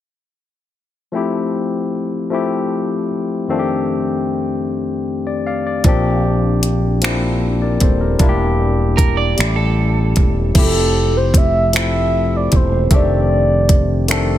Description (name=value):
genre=slow six-eight R&B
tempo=51 BPM (dotted quarters)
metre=6/8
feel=straight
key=F major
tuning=A4 = 440 Hz
part: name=barky tine electric piano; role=accompaniment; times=1.1-14.4 s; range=F2 to F5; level=-19 LUFS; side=left 4 dB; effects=overdrive
part: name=fretless electric bass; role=bass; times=5.8-14.4 s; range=Eb1 to Bb1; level=-17 LUFS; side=right 1 dB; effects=none
part: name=smooth R&B drum kit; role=drums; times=5.8-14.3 s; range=crash cymbal, finger snaps, hi-hat, kick drum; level=-15 LUFS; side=equal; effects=none
part: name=electric guitar at the edge of break-up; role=second line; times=9.0-10.5 s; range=A4 to D5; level=-22 LUFS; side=right 8 dB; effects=none
part: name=mellow horn-like synth lead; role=melody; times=10.6-14.4 s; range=A4 to E5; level=-18 LUFS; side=right 2 dB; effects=chorus
room=light reverb, digital ambience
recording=none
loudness=-14 LUFS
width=side -12 dB against mid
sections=1.1-10.6 A section; 10.6-14.4 B section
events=none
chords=1.1 Fmaj9; 3.5 F13; 5.8 Bb6; 8.2 Em7b5; 9.4 A7; 10.6 Fmaj9; 12.9 F13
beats=| 1.14 2.32 | 3.49 4.67 | 5.84 7.02 | 8.20 9.38 | 10.55 11.73 | 12.90 14.08